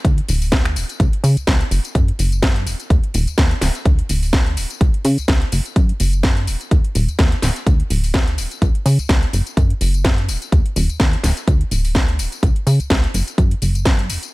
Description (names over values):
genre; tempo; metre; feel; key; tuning
filtered disco house; 126 BPM; 4/4; swing 55% on 16ths; unclear; A4 = 440 Hz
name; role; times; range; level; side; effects
plucky analog bass; bass; 0.0-14.2 s; D1 to C#3; -18 LUFS; equal; sidechain pumping
electronic kick drum; drums; 0.0-14.0 s; none; -16 LUFS; equal; none
house drum kit; drums; 0.0-14.3 s; finger snaps, hi-hat, snare drum, tambourine; -22 LUFS; equal; sidechain pumping on hats, sidechain pumping on perc
room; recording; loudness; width
little or no reverb; none; -15 LUFS; side -21 dB against mid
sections
0.0-14.3 A section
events
none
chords
none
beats
0.05 0.52 | 1.00 1.48 1.95 2.43 | 2.90 3.38 3.86 4.33 | 4.81 5.29 5.76 6.24 | 6.71 7.19 7.67 8.14 | 8.62 9.09 9.57 10.05 | 10.52 11.00 11.47 11.95 | 12.43 12.90 13.38 13.86